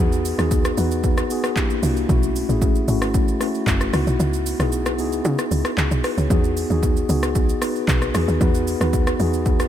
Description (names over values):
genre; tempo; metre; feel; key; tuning
amapiano; 114 BPM; 4/4; straight; unclear; A4 = 440 Hz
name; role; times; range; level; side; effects
mellow tine electric piano; accompaniment; 0.0-9.7 s; A3 to C#5; -22 LUFS; left 2 dB; medium stereo tremolo
tight log drum bass; bass; 0.0-9.7 s; F#1 to C#3; -22 LUFS; equal; none
deep house drum kit; drums; 0.1-9.7 s; handclaps, hi-hat, kick drum, rim click, shaker; -22 LUFS; equal; none
room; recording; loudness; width
light reverb; none; -18 LUFS; side -10 dB against mid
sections
0.0-9.7 A section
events
kick muted 4.2-6.3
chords
0.0 Emaj7; 1.6 C9; 2.1 B9sus4; 3.9 C#m11